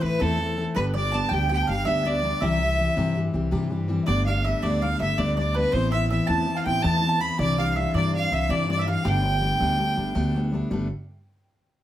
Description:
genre	celtic folk, Celtic slip jig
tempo	108 BPM (dotted quarters)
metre	9/8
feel	straight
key	G mixolydian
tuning	A4 = 440 Hz
part	bright fiddle	melody	0.0-10.4 s	A4 to B5	-27 LUFS	equal	none
part	hollow wooden flute	second line	0.0-10.3 s	A4 to B5	-33 LUFS	left 2 dB	tape echo
part	mandolin	second line	0.0-10.3 s	A4 to B5	-32 LUFS	right 6 dB	none
part	fingerpicked steel-string acoustic guitar	accompaniment	0.0-10.9 s	A2 to G4	-26 LUFS	left 2 dB	none
part	upright bass	bass	0.0-10.9 s	G1 to G2	-27 LUFS	right 1 dB	none
room	moderate studio reverb, RT60 0.6 s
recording	none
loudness	-21 LUFS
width	side -12 dB against mid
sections	0.0-10.7 A section; 10.7-11.8 B section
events	none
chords	0.0 Am; 0.8 G; 2.4 C; 4.1 Gadd9; 5.7 Amadd9; 7.4 Cadd9; 9.1 Gadd9

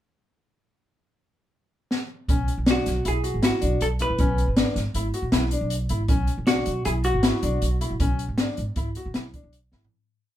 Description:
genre	progressive instrumental, band music in an uneven meter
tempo	157 BPM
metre	5/4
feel	straight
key	B dorian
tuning	A4 = 440 Hz
part	open jazz drum kit	drums	1.9-9.9 s	hi-hat, kick drum, snare drum, toms	-24 LUFS	equal	none
part	warm grand piano	arpeggios	2.3-9.8 s	C#4 to F#4	-30 LUFS	left 3 dB	none
part	upright bass	bass	2.3-9.9 s	G#1 to B2	-26 LUFS	right 1 dB	none
part	vintage hollow-body jazz guitar	melody	2.7-9.5 s	F#4 to B4	-27 LUFS	equal	none
room	moderate small room reverb, RT60 0.5 s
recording	band playing live in one room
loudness	-22 LUFS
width	side -12 dB against mid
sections	0.4-2.3 pickup bar; 2.3-9.9 A section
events	drum fill 1.9-2.3, 9.7; fade-out 8.0-9.9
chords	0.4 N.C.; 2.3 Bm

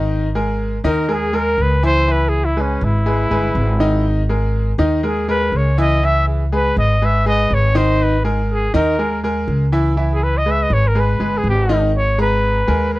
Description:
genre	latin, Cuban son and guajira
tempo	122 BPM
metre	4/4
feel	straight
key	G# minor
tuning	A4 = 440 Hz
part	bright grand piano	arpeggios	0.0-13.0 s	D#3 to A#5	-20 LUFS	equal	none
part	upright bass	bass	0.0-13.0 s	G1 to D#2	-18 LUFS	equal	none
part	breathy trumpet	melody	0.9-13.0 s	C#4 to E5	-19 LUFS	equal	none
room	little or no reverb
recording	dry, close 1970s-style studio recording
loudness	-14 LUFS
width	side -18 dB against mid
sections	0.0-11.9 A section; 11.9-13.0 B section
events	trumpet solo 0.0-11.9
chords	0.1 G#sus2; 2.1 C#m7; 4.1 G#sus2; 6.0 C#m7; 8.0 G#sus2; 10.0 C#m7; 11.9 G#madd9

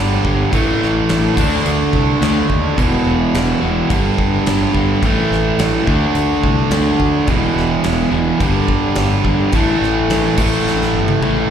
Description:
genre	hard rock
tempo	107 BPM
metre	4/4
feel	straight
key	unclear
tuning	A4 = 440 Hz
part	overdriven electric guitar	riff	0.0-11.5 s	E2 to D4	-18 LUFS	right 9 dB	none
part	overdriven semi-hollow guitar	riff	0.0-11.5 s	E2 to D4	-18 LUFS	left 7 dB	slapback echo
part	fuzz fingered electric bass	bass	0.0-11.4 s	E1 to D#2	-20 LUFS	equal	overdrive
part	gated 80s drum kit	drums	0.2-11.4 s	crash cymbal, kick drum, snare drum, toms	-20 LUFS	equal	none
room	small room ambience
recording	live gig heard through the venue's PA, club reverb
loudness	-13 LUFS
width	side -8 dB against mid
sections	0.0-11.5 A section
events	drum fill 10.7-11.5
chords	0.0 G5; 0.5 A5; 1.4 D5; 2.8 E5; 3.9 G5; 5.0 A5; 5.9 D5; 7.3 E5; 8.4 G5; 9.5 A5

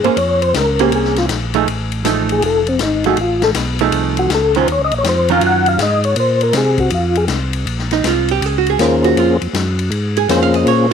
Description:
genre	soul jazz organ trio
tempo	160 BPM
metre	4/4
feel	swing 65% on 8ths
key	Bb minor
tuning	A4 = 440 Hz
part	percussive tonewheel organ	melody	0.0-10.9 s	Bb3 to Gb5	-15 LUFS	left 3 dB	slow rotary speaker, chorus vibrato
part	archtop guitar, miked and amplified	accompaniment	0.0-10.9 s	Eb3 to F5	-17 LUFS	right 13 dB	none
part	tonewheel organ	bass	0.0-10.9 s	F1 to C3	-19 LUFS	equal	overdrive, slow rotary speaker
part	swinging big-band drum kit	drums	0.0-10.8 s	hi-hat, kick drum, ride cymbal, snare drum	-22 LUFS	left 8 dB	none
room	light reverb, small room ambience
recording	1960s-style stereo with parts hard left and right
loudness	-13 LUFS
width	side -7 dB against mid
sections	0.0-7.7 A section; 7.7-10.9 A section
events	tonewheel organ solo 0.0-7.7; hollow-body jazz guitar solo 7.7-10.9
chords	0.0 Bbm9; 1.7 F7#9; 4.7 Ebm9; 6.2 Bbsus2; 6.9 F5; 7.7 Bbm9

